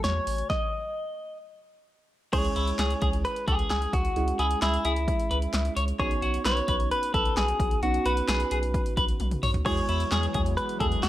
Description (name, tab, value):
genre	synth-pop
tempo	131 BPM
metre	4/4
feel	straight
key	C# minor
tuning	A4 = 440 Hz
part	direct-recorded clean electric guitar	melody	0.0-11.1 s	E4 to D#5	-29 LUFS	equal	tape echo
part	muted felt-like synth keys	accompaniment	0.0-11.1 s	G#3 to G#5	-34 LUFS	right 4 dB	chorus
part	phased analog pad	sustained chords	0.0-0.5, 9.7-11.1 s	C#3 to F#4	-38 LUFS	left 4 dB	phaser, chorus
part	round analog bass	bass	0.0-11.1 s	A1 to E2	-29 LUFS	equal	none
part	punchy analog drum machine	drums	0.0-11.1 s	crash cymbal, handclaps, hi-hat, kick drum, snare drum, toms	-30 LUFS	equal	overdrive
part	semi-hollow electric guitar	second line	2.3-11.1 s	E4 to C#5	-31 LUFS	left 1 dB	tape echo
room	light reverb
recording	none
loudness	-24 LUFS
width	side -14 dB against mid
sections	0.0-2.3 A section; 2.3-11.1 B section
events	stop 0.5-2.3; drum fill 9.2-9.7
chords	0.5 N.C.; 2.3 C#m; 6.0 Badd9; 9.7 Eadd9